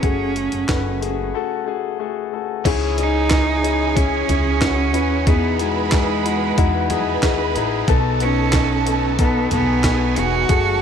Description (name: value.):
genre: piano-driven pop.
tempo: 92 BPM.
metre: 4/4.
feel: straight.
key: C# minor.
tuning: A4 = 440 Hz.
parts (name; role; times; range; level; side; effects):
clear cello; melody; 0.0-10.8 s; G#3 to F#4; -22 LUFS; right 4 dB; slapback echo.
clear baby grand piano; accompaniment; 0.0-10.8 s; G#2 to B4; -22 LUFS; left 13 dB; none.
upright bass; bass; 0.0-10.8 s; E1 to E2; -23 LUFS; right 1 dB; none.
breakbeat sampler-style drum kit; drums; 0.0-10.6 s; crash cymbal, handclaps, hi-hat, kick drum, snare drum, toms; -20 LUFS; right 1 dB; none.
cranked stack guitar; riff; 2.6-10.8 s; F#2 to G#4; -30 LUFS; right 14 dB; overdrive.
dark studio violin section; second line; 2.7-10.8 s; A3 to B5; -27 LUFS; right 11 dB; none.
room: light reverb, studio reverb.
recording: 1960s-style stereo with parts hard left and right, faint mains hum.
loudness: -16 LUFS.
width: side -7 dB against mid.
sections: 0.0-2.6 A section; 2.6-10.8 B section.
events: break 1.3-2.6.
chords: 0.0 F#madd9; 2.6 C#m; 5.3 Emaj7; 7.9 B7.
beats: | 0.03 0.68 1.34 1.99 | 2.65 3.30 3.96 4.61 | 5.26 5.92 6.57 7.23 | 7.88 8.53 9.19 9.84 | 10.49.